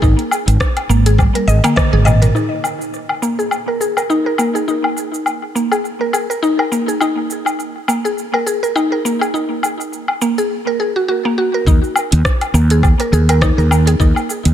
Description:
organic downtempo; 103 BPM; 4/4; swing 56% on 16ths; Eb minor; A4 = 441 Hz
mallet-like synth pluck; arpeggios; 0.0-14.2 s; Bb3 to Eb5; -17 LUFS; equal; chorus, cassette tape, analog delay
mellow fretless electric bass; bass; 0.0-2.3, 11.7-14.5 s; Ab1 to Eb2; -12 LUFS; equal; sidechain pumping
afro-pop drum kit; drums; 0.0-14.5 s; cabasa, hi-hat, rim click, toms, woodblock; -20 LUFS; left 1 dB; tape echo
electronic kick drum; drums; 0.0-1.9, 11.7-14.1 s; -14 LUFS; equal
light reverb, digital ambience; echo-heavy mix; -13 LUFS; side -10 dB against mid
0.0-2.3 A section; 2.3-11.7 B section; 11.7-14.5 A section
drum fill 1.2-2.3; band accent 1.8; filter sweep on synth pluck 2.3-11.7
0.0 Absus2; 2.3 Eb5; 7.0 Absus2; 11.7 Eb5
| 0.02 0.60 1.18 1.76 | 2.35 2.93 3.51 4.09 | 4.68 5.26 5.84 6.42 | 7.01 7.59 8.17 8.76 | 9.34 9.92 10.50 11.09 | 11.67 12.25 12.83 13.42 | 14.00

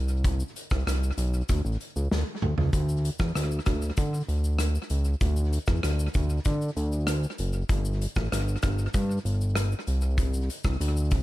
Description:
indie pop, bedroom pop; 97 BPM; 4/4; straight; D major; A4 = 444 Hz
fat analog bass; bass; 0.0-11.2 s; F#1 to D3; -26 LUFS; equal
loose indie drum kit; drums; 0.1-11.2 s; hi-hat, kick drum, rim click, shaker, snare drum, toms; -29 LUFS; equal; tape echo
little or no reverb; echo-heavy mix; -24 LUFS; side -16 dB against mid
0.0-2.7 A section; 2.7-11.2 B section
drum fill 2.1-2.7
| 0.25 0.87 1.49 2.11 | 2.73 3.35 3.97 4.59 | 5.21 5.84 6.46 7.08 | 7.70 8.32 8.94 9.56 | 10.18 10.80

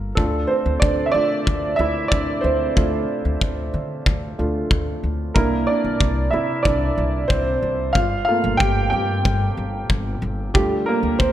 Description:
piano-driven pop; 92 BPM; 4/4; straight; D minor; A4 = 440 Hz
warm upright piano; accompaniment; 0.0-11.3 s; G3 to G5; -20 LUFS; right 2 dB
upright bass; bass; 0.0-11.3 s; G1 to D3; -25 LUFS; left 1 dB
kick drum; drums; 0.2-11.3 s; -20 LUFS; left 1 dB
moderate lush hall reverb, RT60 1.9 s, studio reverb; bright 1980s-style digital production; -18 LUFS; side -12 dB against mid
0.0-11.3 A section
upright piano solo 0.0-11.3
0.2 Dm; 5.4 C7; 8.0 Gm7; 10.6 Dm
| 0.17 0.82 1.47 2.12 | 2.77 3.41 4.06 4.71 | 5.36 6.01 6.66 7.31 | 7.96 8.60 9.25 9.90 | 10.55 11.20

